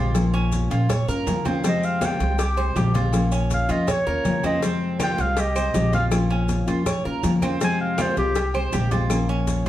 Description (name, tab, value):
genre	latin, Cuban son and guajira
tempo	161 BPM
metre	4/4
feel	straight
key	F minor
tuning	A4 = 441 Hz
part	fingerpicked steel-string acoustic guitar	accompaniment	0.0-9.7 s	C3 to G4	-25 LUFS	left 3 dB	none
part	Cuban tres	arpeggios	0.0-9.7 s	C4 to Db5	-28 LUFS	right 3 dB	none
part	upright bass	bass	0.0-9.7 s	Bb1 to Bb2	-25 LUFS	right 1 dB	none
part	agogo bells and timbales	percussion	0.1-9.7 s	none	-35 LUFS	right 5 dB	none
part	congas	percussion	0.1-9.7 s	none	-32 LUFS	left 2 dB	none
part	cowbell	percussion	0.1-9.7 s	none	-33 LUFS	left 4 dB	none
part	maracas	percussion	0.1-9.7 s	none	-39 LUFS	left 5 dB	none
part	mellow clarinet	melody	1.7-8.5 s	G4 to Ab5	-25 LUFS	equal	none
part	claves	percussion	5.0-9.3 s	none	-38 LUFS	left 1 dB	none
room	moderate studio reverb, RT60 0.8 s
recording	heard from further back in the room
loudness	-20 LUFS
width	side -13 dB against mid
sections	0.0-9.7 A section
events	clarinet solo 0.0-9.7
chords	0.2 Bbm; 1.6 Fmadd9; 3.1 Bbm; 4.6 Fmadd9; 6.1 Bbm; 7.6 Fmadd9; 9.1 Bbm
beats	| 0.15 0.52 0.90 1.27 | 1.64 2.02 2.39 2.76 | 3.13 3.51 3.88 4.25 | 4.62 5.00 5.37 5.74 | 6.12 6.49 6.86 7.24 | 7.61 7.98 8.36 8.73 | 9.10 9.47